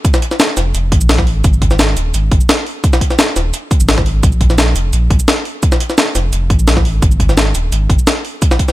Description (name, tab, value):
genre	liquid drum and bass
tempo	172 BPM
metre	4/4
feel	straight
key	unclear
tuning	A4 = 440 Hz
part	electronic kick drum	drums	0.0-8.7 s	none	-13 LUFS	equal	none
part	jungle sampler-style drum kit	drums	0.0-8.7 s	hi-hat, shaker, snare drum	-15 LUFS	equal	none
part	sub bass with octave	bass	0.6-8.0 s	Eb1 to Bb1	-14 LUFS	equal	none
room	little or no reverb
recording	none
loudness	-11 LUFS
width	side -16 dB against mid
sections	0.0-8.7 A section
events	none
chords	none